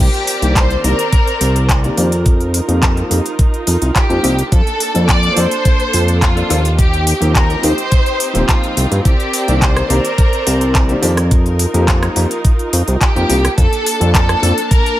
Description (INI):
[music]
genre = nu-disco, nu disco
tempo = 106 BPM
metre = 4/4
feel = straight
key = C dorian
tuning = A4 = 440 Hz
[part]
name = warm symphonic violin section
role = melody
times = 0.0-15.0 s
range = F4 to D5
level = -19 LUFS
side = equal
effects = digital delay
[part]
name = muted studio string section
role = sustained chords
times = 0.0-15.0 s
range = Bb3 to A5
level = -23 LUFS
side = right 2 dB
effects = sidechain pumping
[part]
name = fat analog bass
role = bass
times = 0.0-14.5 s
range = Eb1 to G2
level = -15 LUFS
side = equal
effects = sidechain pumping
[part]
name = pop drum kit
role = drums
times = 0.1-15.0 s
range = handclaps, hi-hat, rim click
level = -20 LUFS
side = equal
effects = none
[part]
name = warm grand piano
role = accompaniment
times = 0.4-14.5 s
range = Eb3 to A4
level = -22 LUFS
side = left 2 dB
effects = sidechain pumping, low-pass filter, digital delay
[part]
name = electronic kick drum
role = drums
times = 0.6-14.8 s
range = none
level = -13 LUFS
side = equal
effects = none
[sound]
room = little or no reverb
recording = none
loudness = -11 LUFS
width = side -14 dB against mid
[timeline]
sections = 0.0-15.0 A section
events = filter sweep on grand piano 0.0-15.0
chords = 0.0 Cm9; 2.3 F9sus4; 4.5 Bbmaj7/F; 6.8 Eb69; 9.1 Cm9; 11.3 F9sus4; 13.6 Bbmaj7/F